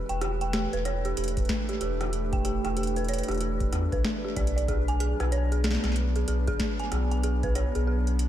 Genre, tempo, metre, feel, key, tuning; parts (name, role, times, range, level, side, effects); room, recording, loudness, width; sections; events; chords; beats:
IDM; 94 BPM; 4/4; swing 62% on 16ths; A4 = 441 Hz
warbly tape-like pad; sustained chords; 0.0-8.3 s; E3 to B4; -33 LUFS; right 2 dB; chorus, built-in reverb
warm sub bass; bass; 0.0-8.3 s; D1 to E2; -28 LUFS; equal
dark detuned synth bell; arpeggios; 0.1-8.0 s; G4 to G#5; -33 LUFS; right 2 dB; chorus, ping-pong delay
booming analog drum machine; drums; 0.1-8.3 s; hi-hat, rim click, snare drum; -34 LUFS; equal; overdrive, digital delay
electronic kick drum; drums; 1.4-7.5 s; -31 LUFS; equal; overdrive
light reverb, digital ambience; -25 LUFS; side -11 dB against mid
0.0-8.3 A section
0.0 Em7; 4.7 Bm
0.21 0.85 1.49 | 2.13 2.77 3.41 4.04 | 4.68 5.32 5.96 6.60 | 7.24 7.87